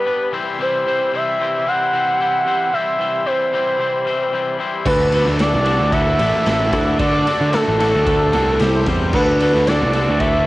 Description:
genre	indie rock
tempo	112 BPM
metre	4/4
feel	straight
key	unclear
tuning	A4 = 440 Hz
part	expressive portamento lead	melody	0.0-10.5 s	A4 to F#5	-18 LUFS	equal	chorus, tape echo
part	brassy analog pad	sustained chords	0.0-10.5 s	G4 to G6	-31 LUFS	right 1 dB	chorus, cassette tape
part	twangy electric guitar	riff	0.0-10.5 s	C3 to C5	-23 LUFS	left 4 dB	cassette tape
part	growling trumpet	second line	4.9-10.5 s	A3 to E4	-29 LUFS	right 3 dB	none
part	twelve-string electric guitar	riff	4.9-10.5 s	G3 to C5	-26 LUFS	right 5 dB	wide subtle chorus, cassette tape, tape echo
part	fuzz picked electric bass	bass	4.9-10.5 s	A1 to D3	-19 LUFS	equal	overdrive
part	raw garage drum kit	drums	4.9-10.3 s	crash cymbal, kick drum, ride cymbal, snare drum	-23 LUFS	equal	cassette tape
room	light reverb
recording	home recording on cassette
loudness	-15 LUFS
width	side -18 dB against mid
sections	0.0-10.5 A section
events	none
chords	0.3 C; 4.9 D; 8.6 C5; 9.1 D

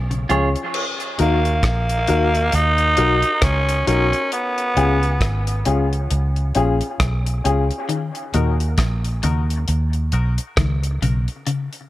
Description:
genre	dub reggae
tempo	67 BPM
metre	4/4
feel	swing 58% on 16ths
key	Eb minor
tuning	A4 = 437 Hz
part	vintage muted fingered electric bass	bass	0.0-11.3 s	Ab1 to Eb2	-19 LUFS	equal	none
part	clean electric guitar	arpeggios	0.1-0.5, 7.9-11.7 s	Bb2 to F3	-27 LUFS	left 4 dB	dub echo
part	damped 70s drum kit	drums	0.1-11.9 s	crash cymbal, hi-hat, kick drum, rim click	-23 LUFS	equal	none
part	clean electric guitar	accompaniment	0.3-0.5 s	F4 to Db5	-26 LUFS	right 3 dB	dub echo
part	dark upright piano	stabs	0.3-11.2 s	Db4 to Bb4	-24 LUFS	left 4 dB	high-pass filter, dub echo
part	raspy tenor saxophone	melody	1.2-5.6 s	Bb3 to Eb4	-20 LUFS	right 1 dB	dub echo
room	moderate spring reverb, RT60 2.6 s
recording	none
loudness	-17 LUFS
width	side -16 dB against mid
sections	0.7-11.9 A section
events	break 0.0-0.7; filter sweep on upright piano 4.3-11.9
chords	0.0 Db; 0.7 Ebm; 4.3 Db; 7.9 Ebm

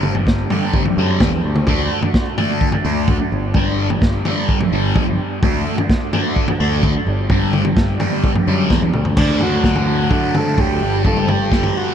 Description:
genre	psychedelic rock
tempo	128 BPM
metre	4/4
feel	straight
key	D major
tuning	A4 = 440 Hz
part	mellow tonewheel organ	sustained chords	0.0-9.2 s	A3 to G5	-28 LUFS	right 5 dB	slow rotary speaker, chorus vibrato
part	thick fuzz guitar	riff	0.0-11.9 s	G2 to D4	-20 LUFS	left 1 dB	distortion, phaser, analog delay
part	overdriven picked electric bass	bass	0.0-11.7 s	G1 to D3	-20 LUFS	left 1 dB	none
part	vintage drum kit	drums	0.0-11.7 s	crash cymbal, kick drum, snare drum, toms	-18 LUFS	equal	none
part	combo organ	melody	9.2-11.9 s	D4 to A4	-21 LUFS	right 2 dB	analog delay
room	little or no reverb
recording	echo-heavy mix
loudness	-14 LUFS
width	side -8 dB against mid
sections	0.0-9.2 A section; 9.2-11.9 B section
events	drum fill 8.7-9.2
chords	0.0 G; 1.7 D; 3.3 G; 5.4 D; 7.1 G; 9.2 D; 10.8 G5

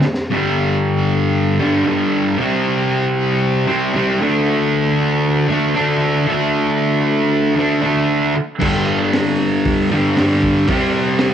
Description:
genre	garage rock duo or trio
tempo	116 BPM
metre	4/4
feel	straight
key	unclear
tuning	A4 = 438 Hz
part	fuzz guitar	riff	0.0-11.3 s	G2 to D4	-14 LUFS	equal	distortion, cassette tape
part	crunchy breakbeat drum kit	drums	0.0-0.3, 8.6-11.3 s	crash cymbal, hi-hat, kick drum, snare drum	-21 LUFS	equal	cassette tape
room	studio reverb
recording	home recording on cassette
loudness	-14 LUFS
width	side -9 dB against mid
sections	0.3-11.3 A section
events	drum fill 0.0-0.3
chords	0.3 G5; 2.4 C5; 4.2 D5; 8.6 G5; 10.7 C5

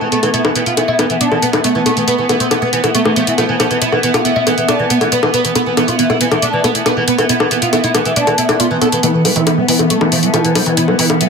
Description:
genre	psychedelic trance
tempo	138 BPM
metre	4/4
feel	straight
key	E phrygian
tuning	A4 = 439 Hz
part	oud	melody	0.0-11.3 s	E3 to A4	-16 LUFS	equal	phaser, low-pass filter, digital delay
part	pulsing gated texture	sustained chords	0.0-11.3 s	B3	-17 LUFS	right 2 dB	chorus, built-in reverb
part	electronic hi-hat and bongos	drums	0.1-11.3 s	none	-16 LUFS	left 2 dB	none
part	overdriven acid bass	riff	9.0-11.3 s	E3 to G3	-16 LUFS	moving between equal and right 6 dB	auto-pan, tape echo
room	moderate plate reverb, RT60 2.0 s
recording	dense, heavily limited modern master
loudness	-11 LUFS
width	side -5 dB against mid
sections	0.0-9.0 A section; 9.0-11.3 B section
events	build-up 9.0-11.3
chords	0.0 E5

